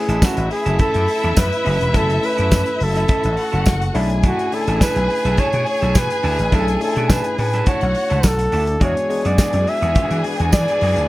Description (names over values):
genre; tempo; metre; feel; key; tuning
disco; 105 BPM; 4/4; straight; unclear; A4 = 440 Hz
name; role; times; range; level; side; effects
warm flugelhorn; melody; 0.0-11.1 s; F#4 to E5; -21 LUFS; equal; none
warm studio violin section; second line; 0.0-11.1 s; E4 to G#5; -25 LUFS; left 1 dB; none
tine electric piano; accompaniment; 0.0-11.1 s; G#3 to B4; -28 LUFS; left 4 dB; none
electric guitar at the edge of break-up; accompaniment; 0.1-11.0 s; C#4 to A4; -28 LUFS; right 5 dB; none
vintage slap bass; bass; 0.1-11.1 s; E1 to E3; -20 LUFS; equal; none
warm soul drum kit; drums; 0.1-11.1 s; hi-hat, kick drum, snare drum; -19 LUFS; equal; none
tambourine; percussion; 0.2-10.7 s; none; -29 LUFS; right 5 dB; none
dark studio string section; sustained chords; 8.8-11.1 s; E3 to G#4; -28 LUFS; left 2 dB; none
room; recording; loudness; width
little or no reverb; none; -15 LUFS; side -17 dB against mid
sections
0.0-11.1 A section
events
none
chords
0.0 F#m7; 3.9 Bm11; 8.8 E9